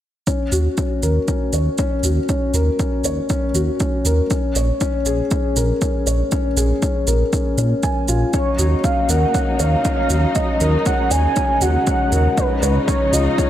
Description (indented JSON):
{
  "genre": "piano and strings electronica",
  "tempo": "119 BPM",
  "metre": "4/4",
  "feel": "straight",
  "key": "Eb minor",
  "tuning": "A4 = 439 Hz",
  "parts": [
    { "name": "felt-muted upright piano", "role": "riff", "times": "0.3-13.5 s", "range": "Db4 to Ab5", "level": "-21 LUFS", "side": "left 2 dB", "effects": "tape echo" },
    { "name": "electronic kick drum", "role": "drums", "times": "0.3-13.5 s", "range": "none", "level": "-22 LUFS", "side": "equal", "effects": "overdrive" },
    { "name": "shaker", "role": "drums", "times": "0.3-13.5 s", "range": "none", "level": "-26 LUFS", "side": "right 4 dB", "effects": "overdrive" },
    { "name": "dark detuned saw bass", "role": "bass", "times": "0.5-13.3 s", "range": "Bb1 to Bb2", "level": "-18 LUFS", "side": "equal", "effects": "sidechain pumping" },
    { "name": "warm velvety synth lead", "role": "melody", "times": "8.3-13.5 s", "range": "Cb5 to Ab5", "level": "-21 LUFS", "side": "right 2 dB", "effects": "chorus" },
    { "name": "dark symphonic string section", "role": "sustained chords", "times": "8.3-13.5 s", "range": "Db3 to Eb4", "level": "-26 LUFS", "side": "left 1 dB", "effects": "sidechain pumping" }
  ],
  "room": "light reverb, small room ambience",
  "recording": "none",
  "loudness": "-16 LUFS",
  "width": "side -12 dB against mid",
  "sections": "0.3-13.5 A section",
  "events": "none",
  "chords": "0.3 Ebm7; 4.3 Bbm7; 8.3 Ebm7; 12.4 Dbadd9"
}